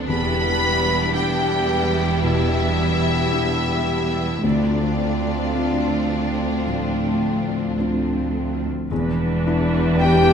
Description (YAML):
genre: cinematic, emotional film score for orchestra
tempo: 54 BPM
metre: 4/4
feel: rubato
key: unclear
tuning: A4 = 439 Hz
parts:
  - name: rich symphonic violin section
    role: second line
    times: 0.0-10.3 s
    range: D4 to G5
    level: -31 LUFS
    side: left 2 dB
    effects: none
  - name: dark symphonic viola section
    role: accompaniment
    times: 0.0-10.3 s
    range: G3 to B4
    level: -28 LUFS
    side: right 1 dB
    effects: none
  - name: felt-muted upright piano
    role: accompaniment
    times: 0.0-10.3 s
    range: D2 to A4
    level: -25 LUFS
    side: left 2 dB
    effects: none
  - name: concert harp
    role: arpeggios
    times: 0.0-10.3 s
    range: D3 to E5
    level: -30 LUFS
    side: left 4 dB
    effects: none
  - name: clear symphonic cello section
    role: bass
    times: 0.0-10.3 s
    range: D2 to E2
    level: -27 LUFS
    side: right 4 dB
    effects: none
  - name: warm studio double bass section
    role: bass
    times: 0.0-10.3 s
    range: E1 to D2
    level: -25 LUFS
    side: right 2 dB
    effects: none
  - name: warm symphonic violin section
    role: melody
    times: 0.1-10.3 s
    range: D5 to B5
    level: -26 LUFS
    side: left 2 dB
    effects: none
  - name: warm clarinet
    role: second line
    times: 0.1-7.7 s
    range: D4 to B4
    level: -29 LUFS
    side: equal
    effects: none
  - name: mellow French horn section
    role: sustained chords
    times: 0.1-10.3 s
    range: B3 to G4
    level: -26 LUFS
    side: left 2 dB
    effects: none
  - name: silver concert flute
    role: second line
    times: 10.0-10.3 s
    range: G5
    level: -21 LUFS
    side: left 3 dB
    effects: none
room: wet scoring stage reverb, RT60 1.6 s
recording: minimal, uncompressed stereo recording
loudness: -18 LUFS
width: side -7 dB against mid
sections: 0.0-8.9 A section; 8.9-10.3 B section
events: none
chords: 0.1 Em7; 4.4 Dm7; 8.9 Em7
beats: | 0.09 1.15 2.23 3.32 | 4.43 5.56 6.67 7.79 | 8.91 9.99